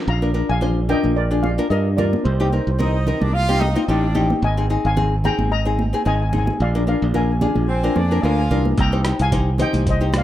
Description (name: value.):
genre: calypso.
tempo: 110 BPM.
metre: 4/4.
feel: swing 54% on 16ths.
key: unclear.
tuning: A4 = 441 Hz.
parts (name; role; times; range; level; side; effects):
steel pan; melody; 0.0-10.2 s; G4 to Bb5; -26 LUFS; left 1 dB; digital delay.
nylon-string guitar; accompaniment; 0.0-10.2 s; C4 to C5; -22 LUFS; left 2 dB; none.
modern bright fingered electric bass; bass; 0.1-10.2 s; Ab1 to G2; -19 LUFS; equal; none.
congas; percussion; 0.6-10.2 s; none; -27 LUFS; right 3 dB; none.
bright horn section; second line; 2.8-4.3, 7.7-8.7 s; C4 to F5; -26 LUFS; right 2 dB; none.
boom bap sampler-style drum kit; drums; 8.8-10.2 s; hi-hat, kick drum, rim click; -24 LUFS; equal; none.
room: small room ambience.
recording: rough home demo mix.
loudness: -16 LUFS.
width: side -12 dB against mid.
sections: 0.1-10.2 A section.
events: none.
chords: 0.1 Bb; 2.3 Cm; 4.4 Abadd9; 6.6 Bb7; 8.8 Cm7.